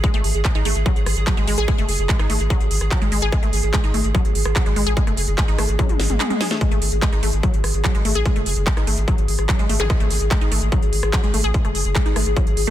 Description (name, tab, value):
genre	psychedelic trance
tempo	146 BPM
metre	4/4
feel	straight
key	unclear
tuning	A4 = 440 Hz
part	pulsing gated texture	sustained chords	0.0-12.7 s	G#4	-28 LUFS	left 1 dB	chorus, built-in reverb, sidechain pumping
part	wide unison pluck	riff	0.0-12.7 s	F#3 to G#4	-26 LUFS	moving between left 4 dB and right 4 dB	auto-pan, sidechain pumping, ping-pong delay
part	electronic kick drum	drums	0.0-12.4 s	none	-20 LUFS	equal	distortion
part	techno drum kit	drums	0.0-12.7 s	handclaps, hi-hat, rim click, snare drum, toms	-26 LUFS	equal	none
part	round analog bass	bass	0.1-12.7 s	F#1 to A1	-21 LUFS	equal	none
part	swell and zap	sound effects	6.0-6.6, 9.8-9.9 s	none	-31 LUFS	left 2 dB	none
room	digital ambience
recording	dense, heavily limited modern master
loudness	-17 LUFS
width	side -12 dB against mid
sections	0.0-12.7 A section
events	drum fill 5.8-6.6; swell 6.0-6.6; kick drops out 6.2-6.6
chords	0.0 G#5